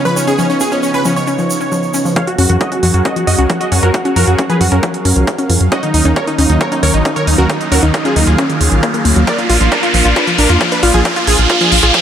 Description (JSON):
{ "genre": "uplifting trance", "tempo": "135 BPM", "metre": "4/4", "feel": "straight", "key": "F# major", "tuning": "A4 = 440 Hz", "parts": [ { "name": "supersaw stab", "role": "melody", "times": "0.0-12.0 s", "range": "C#4 to E#5", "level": "-16 LUFS", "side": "right 1 dB", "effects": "sidechain pumping, low-pass filter, tape echo" }, { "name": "clear grand piano", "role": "second line", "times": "0.0-2.1 s", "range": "C#5 to C#6", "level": "-24 LUFS", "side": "right 1 dB", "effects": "sidechain pumping, tape echo" }, { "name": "lush unison pad", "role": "sustained chords", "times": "0.0-12.0 s", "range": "C#3 to E#5", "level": "-20 LUFS", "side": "right 1 dB", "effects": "chorus, sidechain pumping" }, { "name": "wide unison pluck", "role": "arpeggios", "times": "0.1-12.0 s", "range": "D#3 to E#4", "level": "-18 LUFS", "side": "left 1 dB", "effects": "cassette tape, sidechain pumping, tape echo" }, { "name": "egg shaker", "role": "percussion", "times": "0.1-2.1 s", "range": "none", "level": "-24 LUFS", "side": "right 3 dB", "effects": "none" }, { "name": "electronic hi-hat", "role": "drums", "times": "2.2-12.0 s", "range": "none", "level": "-20 LUFS", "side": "right 3 dB", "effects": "none" }, { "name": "electronic kick drum", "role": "drums", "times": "2.2-12.0 s", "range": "none", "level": "-19 LUFS", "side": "equal", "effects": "high-pass filter on kick, high-pass filter on room" }, { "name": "riser", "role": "sound effects", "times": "5.0-12.0 s", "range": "none", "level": "-17 LUFS", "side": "equal", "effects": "none" }, { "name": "tight sequencer bass", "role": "bass", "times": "2.4-11.9 s", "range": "A#1 to F#2", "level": "-13 LUFS", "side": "equal", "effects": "sidechain pumping" } ], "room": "light reverb", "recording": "none", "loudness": "-10 LUFS", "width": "side -9 dB against mid", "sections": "0.0-2.2 A section; 2.2-12.0 B section", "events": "build-up 2.2-12.0; filter sweep on supersaw synth 2.2-12.0; filter sweep on synth pluck 2.2-12.0; riser 5.0-12.0; drum fill 9.3-12.0", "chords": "0.0 C#7; 2.2 F#maj7; 5.7 D#m7; 9.3 A#" }